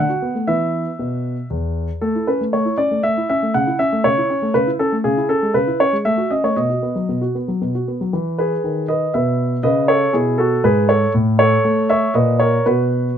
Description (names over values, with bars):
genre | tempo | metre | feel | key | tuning
classical-period piano sonatina | 118 BPM | 3/4 | straight | A major, E major from 5.0 s | A4 = 440 Hz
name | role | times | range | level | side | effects
warm grand piano | solo | 0.0-13.2 s | E2 to F#5 | -16 LUFS | equal | none
room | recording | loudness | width
light reverb | close, detailed microphones | -16 LUFS | side -8 dB against mid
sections
0.0-8.1 A section; 8.1-13.2 B section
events
none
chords
0.5 E5; 2.0 A; 3.5 A/C#; 5.0 C#m; 6.1 F#m7/A; 6.6 B; 8.1 E; 9.6 C#m; 11.1 A; 12.1 A#madd11; 12.7 B5